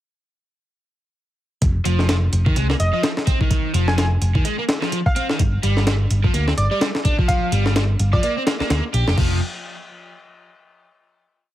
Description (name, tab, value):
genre	breakbeat, breaks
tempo	127 BPM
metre	4/4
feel	swing 58% on 16ths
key	F dorian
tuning	A4 = 445 Hz
part	picked electric bass	bass	1.6-9.4 s	F1 to D2	-19 LUFS	equal	none
part	breakbeat sampler-style drum kit	drums	1.6-9.3 s	crash cymbal, hi-hat, kick drum, snare drum	-21 LUFS	equal	none
part	overdriven semi-hollow guitar	riff	1.9-9.4 s	Eb3 to G4	-25 LUFS	equal	digital delay
part	plucky unison lead	melody	2.8-8.3 s	D5 to Ab5	-26 LUFS	right 1 dB	old record sound, digital delay
room	little or no reverb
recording	heavily compressed radio sound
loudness	-17 LUFS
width	side -13 dB against mid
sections	1.6-9.2 drop; 9.2-11.1 final chord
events	drop 1.6-9.2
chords	1.6 F7(no3); 5.4 Gm7; 9.2 N.C.